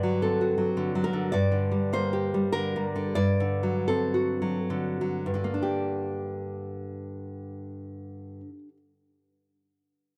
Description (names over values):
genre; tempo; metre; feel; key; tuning
romantic piece for solo classical guitar; 60-108 BPM; 3/4; rubato; G minor; A4 = 440 Hz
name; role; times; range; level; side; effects
nylon-string guitar; solo; 0.0-8.8 s; G2 to D5; -28 LUFS; equal; none
room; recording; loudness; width
small room ambience; dry, close 1970s-style studio recording; -28 LUFS; mono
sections
0.0-5.7 A section; 5.7-10.2 B section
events
slowing down 0.5-5.7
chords
0.0 D7/G; 1.3 Gm; 3.2 D7/G; 5.7 Gm